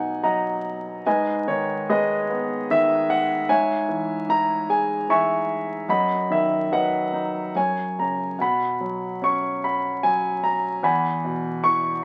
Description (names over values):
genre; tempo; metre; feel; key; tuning
classical, lyrical solo piano; 74 BPM; 3/4; rubato; B major; A4 = 439 Hz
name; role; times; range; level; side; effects
clear concert grand piano; solo; 0.0-12.0 s; E2 to C#6; -23 LUFS; equal; none
room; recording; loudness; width
wet studio reverb, RT60 0.6 s; very old 78 rpm record, vinyl crackle, nothing above 10.3 kHz; -23 LUFS; mono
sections
0.0-12.0 A section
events
none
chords
0.0 B; 1.0 G#m; 3.5 C#m/G#; 5.9 B/F#; 7.5 F#add9; 8.4 Bsus2; 10.8 Eadd9